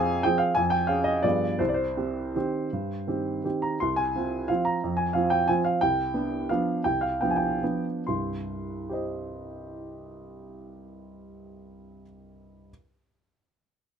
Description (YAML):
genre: classical, piano waltz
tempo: 126-188 BPM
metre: 3/4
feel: rubato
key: C minor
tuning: A4 = 440 Hz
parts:
  - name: clear upright piano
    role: solo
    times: 0.0-12.7 s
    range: C2 to C6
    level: -25 LUFS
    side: right 1 dB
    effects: none
room: little or no reverb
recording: close, detailed microphones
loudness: -24 LUFS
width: side -7 dB against mid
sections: 0.0-3.8 A section; 3.8-8.1 B section; 8.1-10.6 C section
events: slowing down 5.3-8.1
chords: 0.0 Fm; 0.6 Db/F; 1.2 G7b9; 1.6 Cm; 3.8 Fm/C; 5.8 G7/C; 8.1 Cm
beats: 0.24 | 0.56 0.90 1.24 | 1.60 1.97 2.35 | 2.72 3.08 3.45 | 3.81 4.15 4.50 | 4.83 5.15 5.48 | 5.82 6.14 6.49 | 6.84 7.21 7.62 | 8.06 8.47 8.89 | 9.30 9.71 10.14